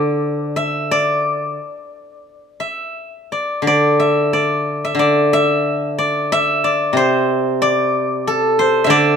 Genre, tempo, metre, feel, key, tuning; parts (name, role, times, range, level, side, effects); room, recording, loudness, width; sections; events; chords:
chinese traditional, Chinese solo plucked strings; 90 BPM; 4/4; uneven beats, rubato; A4 = 440 Hz
steel-string zither; solo; 0.0-9.2 s; C3 to E5; -15 LUFS; equal
light reverb; minimal, uncompressed stereo recording; -14 LUFS; side -7 dB against mid
0.0-3.6 A section; 3.6-9.2 B section